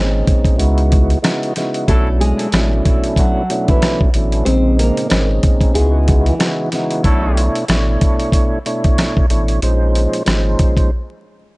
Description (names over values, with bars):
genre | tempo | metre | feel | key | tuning
hip hop, boom-bap hip-hop | 93 BPM | 4/4 | swing 57% on 16ths | unclear | A4 = 440 Hz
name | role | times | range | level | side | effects
mellow tonewheel organ | accompaniment | 0.0-10.9 s | A#2 to C#5 | -19 LUFS | right 1 dB | chorus vibrato, slow rotary speaker, cassette tape, high-pass filter, low-pass filter
saturated sub bass | bass | 0.0-10.6 s | G#1 to C#2 | -15 LUFS | equal | none
dusty soul sampler-style drum kit | drums | 0.3-10.9 s | hi-hat, kick drum, rim click, snare drum | -16 LUFS | equal | none
nylon-string guitar | melody | 1.9-7.0 s | E3 to B#4 | -21 LUFS | equal | high-pass filter, low-pass filter, tape echo
warm trumpet section | stabs | 1.9-2.1, 7.0-7.5 s | F#3 to A4 | -28 LUFS | equal | high-pass filter, low-pass filter, tape echo
room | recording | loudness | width
little or no reverb | dry, gritty hardware recording, vinyl crackle, nothing above 11.0 kHz | -13 LUFS | side -23 dB against mid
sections
0.0-11.6 A section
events
break 10.9-11.6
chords
0.0 A#m11; 0.6 C#m11; 1.9 Bm11; 4.5 A#m11; 5.8 C#m11; 7.0 Bm11; 9.6 A#m11; 10.9 N.C.